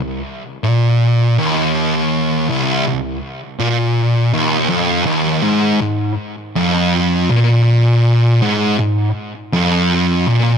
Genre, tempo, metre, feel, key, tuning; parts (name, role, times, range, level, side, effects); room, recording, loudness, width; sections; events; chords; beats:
metal; 81 BPM; 4/4; straight; C minor; A4 = 442 Hz
thick fuzz guitar; solo; 0.0-10.6 s; C2 to Bb2; -13 LUFS; equal; distortion, tape echo
wet studio reverb, RT60 0.8 s; -13 LUFS; side -7 dB against mid
0.0-10.6 A section
0.26 1.00 1.74 | 2.48 3.23 3.97 4.71 | 5.46 6.20 6.94 7.68 | 8.43 9.17 9.91